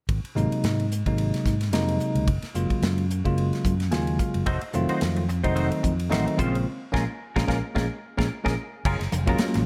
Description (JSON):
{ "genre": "electric jazz fusion", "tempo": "110 BPM", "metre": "4/4", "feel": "swing 56% on 16ths", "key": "Gb lydian", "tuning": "A4 = 441 Hz", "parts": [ { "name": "fingered electric bass", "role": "bass", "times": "0.1-9.7 s", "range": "F1 to Ab2", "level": "-29 LUFS", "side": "equal", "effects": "none" }, { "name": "modern studio drum kit", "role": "drums", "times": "0.1-9.7 s", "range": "crash cymbal, hi-hat, kick drum, ride cymbal, snare drum", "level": "-31 LUFS", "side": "equal", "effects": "none" }, { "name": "bell-like tine electric piano", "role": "accompaniment", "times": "0.4-9.7 s", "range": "C3 to Ab5", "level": "-29 LUFS", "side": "equal", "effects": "none" }, { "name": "semi-hollow electric guitar", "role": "stabs", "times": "4.5-9.6 s", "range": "Ab3 to C5", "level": "-34 LUFS", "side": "equal", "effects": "ensemble chorus" }, { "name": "congas", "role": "percussion", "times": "9.1-9.7 s", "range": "none", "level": "-31 LUFS", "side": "equal", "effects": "none" } ], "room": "moderate large studio reverb, RT60 1.3 s, studio reverb", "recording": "none", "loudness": "-25 LUFS", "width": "mono", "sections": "0.1-8.9 A section", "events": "tine electric piano fill 3.6-4.5; band accent 6.7-8.9; drum fill 8.3-8.9", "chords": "0.1 Ab9; 2.3 Gbmaj9; 4.5 F7b9; 6.4 Bbm9; 8.9 Gbmaj9" }